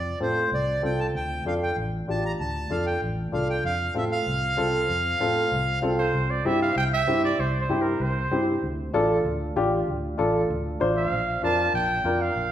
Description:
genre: latin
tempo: 192 BPM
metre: 4/4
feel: straight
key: D minor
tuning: A4 = 440 Hz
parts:
  - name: accordion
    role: melody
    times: 0.0-5.8 s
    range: C5 to Bb5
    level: -27 LUFS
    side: equal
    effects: none
  - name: fingered electric bass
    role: bass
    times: 0.0-12.5 s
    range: A1 to A2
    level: -29 LUFS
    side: equal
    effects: none
  - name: dark upright piano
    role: accompaniment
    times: 0.2-12.3 s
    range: C4 to C5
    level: -26 LUFS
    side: left 1 dB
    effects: none
  - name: warm trumpet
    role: second line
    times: 6.0-8.5, 11.0-12.5 s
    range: Bb4 to A5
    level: -26 LUFS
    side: right 3 dB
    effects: none
room: wet recital hall reverb, RT60 1.5 s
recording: recorded in a church or concert hall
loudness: -22 LUFS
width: side -11 dB against mid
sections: 0.0-6.1 A section; 6.1-12.5 B section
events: trumpet solo 6.1-12.5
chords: 0.0 F; 1.1 Dm; 3.6 F; 6.1 C; 8.6 Dm; 11.1 Bb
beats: 0.21 0.52 0.83 | 1.15 1.46 1.77 2.08 | 2.40 2.71 3.02 3.33 | 3.64 3.96 4.27 4.58 | 4.89 5.21 5.52 5.83 | 6.14 6.45 6.76 7.08 | 7.39 7.70 8.01 8.32 | 8.63 8.94 9.25 9.56 | 9.88 10.19 10.50 10.81 | 11.12 11.43 11.74 12.05 | 12.36

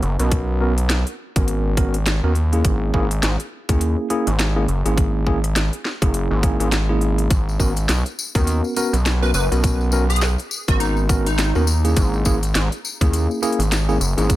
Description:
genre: glitch hop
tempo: 103 BPM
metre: 4/4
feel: swing 59% on 16ths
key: G# minor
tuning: A4 = 439 Hz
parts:
  - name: gritty driven synth bass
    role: bass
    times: 0.0-14.4 s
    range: F#1 to D#2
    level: -19 LUFS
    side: equal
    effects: none
  - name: drum and bass drum kit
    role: drums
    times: 0.0-14.4 s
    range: hi-hat, rim click, snare drum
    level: -24 LUFS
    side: equal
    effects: small room ambience
  - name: tine electric piano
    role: stabs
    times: 0.2-14.4 s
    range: A#3 to A#4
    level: -24 LUFS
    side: equal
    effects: medium stereo tremolo, sidechain pumping, low-pass filter, dub echo
  - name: electronic kick drum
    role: drums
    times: 0.3-14.4 s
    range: none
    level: -18 LUFS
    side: equal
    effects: small room ambience
  - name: tambourine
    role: percussion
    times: 7.3-14.4 s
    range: none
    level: -30 LUFS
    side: left 5 dB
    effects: none
  - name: plucky unison lead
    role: melody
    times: 9.2-11.8 s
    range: D#4 to B4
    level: -27 LUFS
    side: equal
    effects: phaser, analog chorus, dub echo
room: little or no reverb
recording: none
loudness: -17 LUFS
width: side -15 dB against mid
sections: 0.0-14.4 A section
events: filter sweep on tine electric piano 0.0-14.4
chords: 0.0 G#m11; 2.6 F#9; 7.3 G#m11; 12.0 F#9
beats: | 0.32 0.90 1.48 2.06 | 2.65 3.23 3.81 4.39 | 4.98 5.56 6.14 6.72 | 7.31 7.89 8.47 9.05 | 9.64 10.22 10.80 11.38 | 11.97 12.55 13.13 13.72 | 14.30

